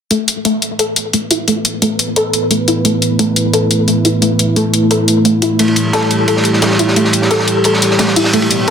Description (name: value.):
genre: dark technical drum and bass.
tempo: 175 BPM.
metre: 4/4.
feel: straight.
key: unclear.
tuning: A4 = 439 Hz.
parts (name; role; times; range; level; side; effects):
dark analog pad; sustained chords; 0.1-8.7 s; A3 to B4; -15 LUFS; right 1 dB; chorus.
soft round pluck; arpeggios; 0.1-8.7 s; A3 to A4; -15 LUFS; left 1 dB; ensemble chorus, ping-pong delay.
electronic hi-hat; drums; 0.1-8.7 s; none; -17 LUFS; left 2 dB; none.
crunchy breakbeat drum kit; drums; 5.6-8.7 s; hi-hat, ride cymbal, snare drum; -16 LUFS; right 2 dB; high-pass filter on cymbals, high-pass filter on hats, high-pass filter on snare, high-pass filter on room.
riser; sound effects; 8.5-8.7 s; none; -21 LUFS; right 2 dB; none.
room: moderate digital room reverb, RT60 1.1 s, studio reverb.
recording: dense, heavily limited modern master.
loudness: -11 LUFS.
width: side -7 dB against mid.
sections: 0.1-8.7 A section.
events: filter sweep on synth pluck 0.1-8.7; riser 8.5.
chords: 0.1 Asus2.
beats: | 0.11 0.45 0.79 1.14 | 1.48 1.82 2.16 2.51 | 2.85 3.19 3.54 3.88 | 4.22 4.56 4.91 5.25 | 5.59 5.93 6.28 6.62 | 6.96 7.31 7.65 7.99 | 8.34 8.68.